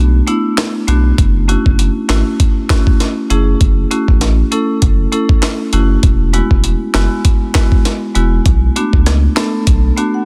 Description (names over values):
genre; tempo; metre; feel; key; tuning
dancehall; 99 BPM; 4/4; swing 56% on 16ths; F# minor; A4 = 443 Hz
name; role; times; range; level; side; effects
saturated sub bass; bass; 0.0-9.9 s; E1 to C#2; -15 LUFS; equal; none
marimba with medium mallets; accompaniment; 0.3-10.2 s; G#3 to A5; -19 LUFS; equal; sidechain pumping
jungle sampler-style drum kit; drums; 0.3-10.1 s; handclaps, hi-hat, kick drum, rim click, snare drum; -15 LUFS; equal; soft clipping on snare
room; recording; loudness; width
little or no reverb; dense, heavily limited modern master; -13 LUFS; mono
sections
0.0-10.2 A section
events
break 0.0-1.2; marimba fill 9.7-10.2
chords
0.0 Bm7; 1.2 F#m7; 6.0 Eadd9; 8.5 Bm7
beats
0.58 | 1.18 1.79 2.40 3.00 | 3.61 4.21 4.82 5.43 | 6.03 6.64 7.25 7.85 | 8.46 9.06 9.67